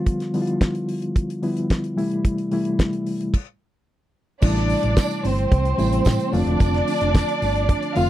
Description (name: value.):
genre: disco.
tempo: 110 BPM.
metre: 4/4.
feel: straight.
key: A minor.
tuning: A4 = 443 Hz.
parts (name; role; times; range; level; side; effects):
mellow reed electric piano; accompaniment; 0.0-8.1 s; C3 to F4; -23 LUFS; left 2 dB; fast tremolo.
damped 70s drum kit; drums; 0.1-8.1 s; crash cymbal, hi-hat, kick drum, snare drum; -20 LUFS; equal; none.
dark studio string section; second line; 4.4-8.1 s; C4 to F5; -23 LUFS; right 2 dB; none.
hollow-body short-scale fingered electric bass; bass; 4.4-8.1 s; E1 to A2; -23 LUFS; equal; none.
tambourine; percussion; 4.4-8.1 s; none; -40 LUFS; right 15 dB; none.
room: little or no reverb.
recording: dry, close 1970s-style studio recording.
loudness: -19 LUFS.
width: side -13 dB against mid.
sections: 0.0-4.4 A section; 4.4-8.1 B section.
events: stop 3.3-4.4.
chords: 0.0 G7; 2.0 Am7; 6.3 F6.